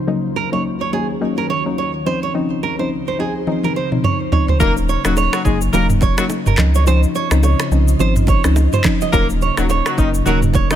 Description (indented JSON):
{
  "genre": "afrobeats",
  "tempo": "106 BPM",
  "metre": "4/4",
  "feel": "swing 58% on 16ths",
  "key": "Eb dorian",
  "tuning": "A4 = 440 Hz",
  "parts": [
    { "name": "ethereal airy pad", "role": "sustained chords", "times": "0.0-10.8 s", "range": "Db2 to Eb5", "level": "-26 LUFS", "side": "right 2 dB", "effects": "ensemble chorus, built-in reverb" },
    { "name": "soft round pluck", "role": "accompaniment", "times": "0.1-10.8 s", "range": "F3 to Eb4", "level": "-21 LUFS", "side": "left 4 dB", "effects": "chorus" },
    { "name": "nylon-string guitar", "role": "riff", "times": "0.4-10.7 s", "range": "Ab4 to Eb5", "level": "-22 LUFS", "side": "right 8 dB", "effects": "digital delay" },
    { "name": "afro-pop drum kit", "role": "drums", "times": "3.5-10.8 s", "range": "finger snaps, handclaps, kick drum, rim click, shaker, toms", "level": "-19 LUFS", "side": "equal", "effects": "none" },
    { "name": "warm horn section", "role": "second line", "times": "4.6-10.8 s", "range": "Eb3 to Bb4", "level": "-23 LUFS", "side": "left 3 dB", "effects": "none" },
    { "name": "warm sub bass", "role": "bass", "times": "4.6-10.6 s", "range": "Eb1 to Db2", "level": "-16 LUFS", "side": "equal", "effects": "none" },
    { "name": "congas and bongos", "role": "percussion", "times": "4.6-10.7 s", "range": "none", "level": "-27 LUFS", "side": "right 6 dB", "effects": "none" }
  ],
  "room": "little or no reverb",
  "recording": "none",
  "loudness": "-14 LUFS",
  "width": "side -11 dB against mid",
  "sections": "0.0-4.6 A section; 4.6-10.8 B section",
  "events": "drum fill 3.5-4.6",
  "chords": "0.1 Ebm7; 2.1 Dbmaj9; 4.6 Ebm7; 6.6 Dbmaj9; 9.1 Ebm7",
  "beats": "| 0.07 0.64 1.21 1.77 | 2.34 2.90 3.47 4.04 | 4.60 5.17 5.73 6.30 | 6.87 7.43 8.00 8.56 | 9.13 9.70 10.26"
}